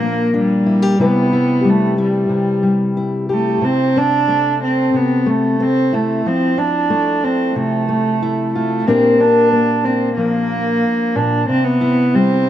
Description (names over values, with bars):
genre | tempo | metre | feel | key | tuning
acoustic folk-pop ballad | 91 BPM | 4/4 | straight | unclear | A4 = 441 Hz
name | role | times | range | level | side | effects
warm cello | melody | 0.0-12.5 s | G3 to D4 | -16 LUFS | right 2 dB | analog delay
fingerpicked steel-string acoustic guitar | accompaniment | 0.0-12.5 s | Bb2 to B4 | -17 LUFS | left 2 dB | none
room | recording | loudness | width
wet spring reverb, RT60 2.3 s | dark, warm production | -13 LUFS | side -11 dB against mid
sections
0.0-12.5 A section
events
none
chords
0.0 Bb6; 1.0 Cmaj7; 3.6 Am/C; 6.2 Fmaj7; 8.9 Bb6; 11.5 Cmaj7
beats
0.33 | 0.99 1.64 2.30 2.96 | 3.62 4.27 4.93 5.59 | 6.25 6.91 7.56 8.22 | 8.87 9.53 10.18 10.84 | 11.49 12.14